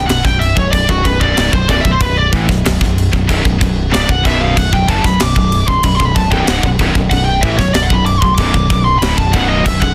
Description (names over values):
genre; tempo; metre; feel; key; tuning
heavy metal; 94 BPM; 4/4; straight; B minor; A4 = 439 Hz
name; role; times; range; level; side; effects
high-gain lead guitar; melody; 0.0-9.9 s; F#4 to D6; -19 LUFS; equal; distortion
distorted electric guitar; riff; 0.0-9.9 s; B1 to E3; -23 LUFS; equal; overdrive
heavy high-gain guitar; riff; 0.0-9.9 s; B1 to E3; -23 LUFS; equal; none
heavy high-gain guitar; riff; 0.0-9.9 s; B1 to E3; -26 LUFS; equal; none
growling fingered electric bass; bass; 0.0-9.9 s; B0 to A1; -20 LUFS; equal; overdrive
tight metal drum kit; drums; 0.1-9.9 s; crash cymbal, kick drum, snare drum; -18 LUFS; equal; none
room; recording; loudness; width
little or no reverb; dense, heavily limited modern master; -13 LUFS; mono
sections
0.0-9.9 A section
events
lead electric guitar solo 0.0-9.9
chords
0.0 B5